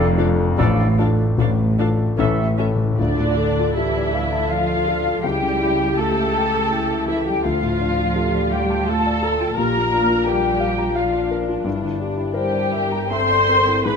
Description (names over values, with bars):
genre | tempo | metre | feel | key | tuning
classical | 73-87 BPM | 3/4 | rubato | D minor | A4 = 440 Hz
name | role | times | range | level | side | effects
warm concert grand piano | melody | 0.0-14.0 s | F1 to Bb5 | -22 LUFS | left 3 dB | none
dark clarinet | second line | 0.0-2.5 s | C#4 to D4 | -34 LUFS | left 5 dB | none
large flute ensemble | second line | 0.0-14.0 s | D5 to C6 | -24 LUFS | left 2 dB | none
warm oboe | second line | 0.0-2.5 s | A4 | -33 LUFS | right 5 dB | none
clear trombone section | sustained chords | 0.0-2.5 s | E3 to A3 | -31 LUFS | right 3 dB | none
mellow French horn section | sustained chords | 0.0-14.0 s | C#4 to C5 | -26 LUFS | left 4 dB | none
mellow trumpet section | stabs | 0.0-2.5 s | D5 to E5 | -31 LUFS | right 1 dB | none
dark tuba | bass | 0.0-2.9 s | F1 to A1 | -27 LUFS | right 5 dB | none
muted symphonic cello section | bass | 0.0-14.0 s | F2 to C4 | -27 LUFS | right 2 dB | none
muted symphonic double bass section | bass | 0.0-14.0 s | F1 to D2 | -28 LUFS | right 5 dB | none
muted symphonic violin section | melody | 0.2-14.0 s | D4 to F5 | -34 LUFS | left 4 dB | none
muted symphonic violin section | second line | 0.2-14.0 s | A4 to C6 | -29 LUFS | left 4 dB | none
muted symphonic viola section | accompaniment | 0.2-14.0 s | C#4 to C5 | -26 LUFS | right 1 dB | none
timpani | percussion | 2.2-4.1 s | A2 to D3 | -28 LUFS | left 2 dB | none
room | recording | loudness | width
light reverb | close, detailed microphones | -17 LUFS | side -6 dB against mid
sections
0.0-3.0 A section; 3.0-14.0 B section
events
timpani fill 2.2-3.0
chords
0.0 Dm/F; 0.6 Dm/A; 2.2 A; 3.0 Dm; 5.2 A7/C#; 7.4 Dm; 9.6 Bb; 11.7 Em7b5/G